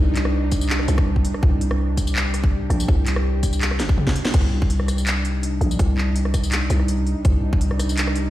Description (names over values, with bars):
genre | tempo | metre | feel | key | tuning
half-time drum and bass | 165 BPM | 4/4 | swing 54% on 16ths, half-time | C minor | A4 = 440 Hz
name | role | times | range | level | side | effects
bowed-like drone | sustained chords | 0.0-8.3 s | C3 to G4 | -28 LUFS | right 1 dB | built-in reverb, sidechain pumping
growling 808-style bass | bass | 0.0-8.3 s | G1 to C2 | -20 LUFS | equal | none
drum and bass drum kit | drums | 0.2-8.2 s | crash cymbal, handclaps, hi-hat, rim click, snare drum, tambourine, toms | -26 LUFS | equal | studio reverb
electronic kick drum | drums | 0.5-7.6 s | none | -19 LUFS | equal | studio reverb
room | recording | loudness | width
light reverb, digital ambience | played on a big sound system in a bare room, large studio reverb | -18 LUFS | side -15 dB against mid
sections
0.0-4.3 A section; 4.3-8.3 A section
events
drop 0.0-4.3, 4.3-8.3; drum fill 3.8-4.3; band accent 4.2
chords
0.0 Cm